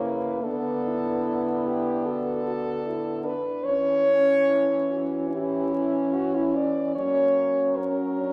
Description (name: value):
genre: classical, lyrical piece for horn quartet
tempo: 73 BPM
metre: 4/4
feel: rubato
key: B minor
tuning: A4 = 441 Hz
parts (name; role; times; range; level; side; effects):
- clear French horn; melody; 0.0-8.3 s; E4 to D5; -28 LUFS; equal; none
- dark French horn; second line; 0.0-8.3 s; A#3 to G4; -36 LUFS; equal; none
- mellow French horn; accompaniment; 0.0-8.3 s; A#3 to C#4; -30 LUFS; equal; none
- warm French horn; bass; 0.0-8.3 s; C#3 to F#3; -36 LUFS; equal; none
room: moderate scoring stage reverb, RT60 1.8 s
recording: vinyl crackle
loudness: -25 LUFS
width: mono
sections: 0.0-8.3 A section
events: none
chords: 0.4 Bm/D; 3.7 Esus2; 7.0 F#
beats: | 0.43 1.25 2.06 2.85 | 3.65 4.48 5.30 6.13 | 6.96 7.78